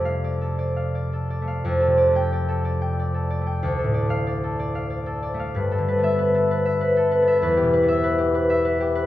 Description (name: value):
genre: classical, solo harp piece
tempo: 93 BPM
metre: 3/4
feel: uneven beats, rubato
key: unclear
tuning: A4 = 440 Hz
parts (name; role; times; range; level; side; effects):
- concert harp; solo; 0.0-9.1 s; D2 to G5; -20 LUFS; left 1 dB; none
room: wet recital hall reverb, RT60 1.7 s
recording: heard from further back in the room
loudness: -20 LUFS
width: side -14 dB against mid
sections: 0.0-1.6 A section; 1.6-9.1 A section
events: none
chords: 0.0 F6; 1.6 F69; 3.6 Dm; 5.5 G69; 7.4 Em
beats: 0.23 0.94 | 1.64 2.31 2.97 | 3.61 4.25 4.89 | 5.54 6.18 6.80 | 7.42 8.04 8.66